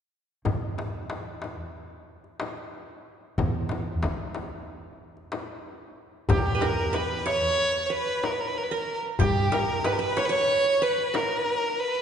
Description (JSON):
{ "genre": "Turkish makam ensemble", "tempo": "185 BPM (eighths)", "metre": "9/8", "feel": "straight", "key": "unclear", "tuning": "A4 = 440 Hz", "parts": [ { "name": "upright bass", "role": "bass", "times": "0.5-9.5 s", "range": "E2 to G2", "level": "-31 LUFS", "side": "equal", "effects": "none" }, { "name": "darbuka", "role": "percussion", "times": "0.5-11.5 s", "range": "none", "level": "-33 LUFS", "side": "left 1 dB", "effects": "none" }, { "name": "frame drum", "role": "percussion", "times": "0.5-11.3 s", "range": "none", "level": "-34 LUFS", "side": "left 4 dB", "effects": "none" }, { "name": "clear violin", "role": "melody", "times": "6.3-12.0 s", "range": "G4 to C#5", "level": "-25 LUFS", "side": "right 1 dB", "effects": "none" }, { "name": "qanun", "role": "second line", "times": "6.3-12.0 s", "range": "G4 to C#5", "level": "-29 LUFS", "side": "right 3 dB", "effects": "none" } ], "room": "wet church reverb, RT60 2.8 s", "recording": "recorded in a church or concert hall, nothing above 10.3 kHz", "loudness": "-24 LUFS", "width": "side -8 dB against mid", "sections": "0.5-6.3 A section; 6.3-12.0 B section", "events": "none", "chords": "none" }